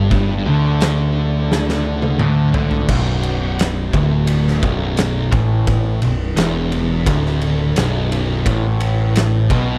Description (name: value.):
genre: stoner and doom metal.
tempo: 86 BPM.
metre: 4/4.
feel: straight.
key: B minor.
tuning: A4 = 440 Hz.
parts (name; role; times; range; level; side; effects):
crunchy overdriven guitar; riff; 0.0-9.8 s; B1 to D3; -24 LUFS; equal; none.
thick fuzz guitar; riff; 0.0-9.8 s; B1 to D3; -25 LUFS; equal; distortion.
thick fuzz guitar; riff; 0.0-9.8 s; B1 to D3; -24 LUFS; equal; distortion.
growling picked electric bass; bass; 0.0-9.8 s; B0 to D2; -24 LUFS; equal; overdrive.
oversized low-tuned drum kit; drums; 0.1-9.7 s; crash cymbal, kick drum, ride cymbal, snare drum, toms; -23 LUFS; equal; none.
room: little or no reverb.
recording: none.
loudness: -17 LUFS.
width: mono.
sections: 0.0-2.9 A section; 2.9-9.8 B section.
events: drum fill 1.5-2.9.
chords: 0.0 G5; 2.9 Bm; 8.5 Gadd9 (rootless).